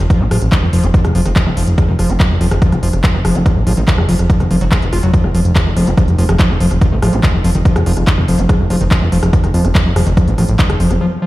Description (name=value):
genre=psychedelic trance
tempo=143 BPM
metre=4/4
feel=straight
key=F major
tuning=A4 = 440 Hz
part: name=overdriven acid bass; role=riff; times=0.0-11.3 s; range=Eb3 to F4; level=-18 LUFS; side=left 1 dB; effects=auto-pan, sidechain pumping, tape echo
part: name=fat analog bass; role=bass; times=0.0-11.0 s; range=F1 to A1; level=-14 LUFS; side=equal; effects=none
part: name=techno drum kit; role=drums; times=0.0-11.0 s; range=handclaps, hi-hat, rim click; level=-22 LUFS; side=left 1 dB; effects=none
part: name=electronic kick drum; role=drums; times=0.1-10.7 s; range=none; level=-12 LUFS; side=equal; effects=none
room=light reverb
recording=played on a big sound system in a bare room, stone room reverb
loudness=-11 LUFS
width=side -17 dB against mid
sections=0.0-11.3 A section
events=break 11.0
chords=0.0 F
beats=| 0.10 0.52 0.94 1.36 | 1.78 2.20 2.62 3.04 | 3.46 3.88 4.30 4.72 | 5.14 5.56 5.97 6.39 | 6.82 7.23 7.65 8.07 | 8.49 8.91 9.33 9.75 | 10.17 10.59 11.01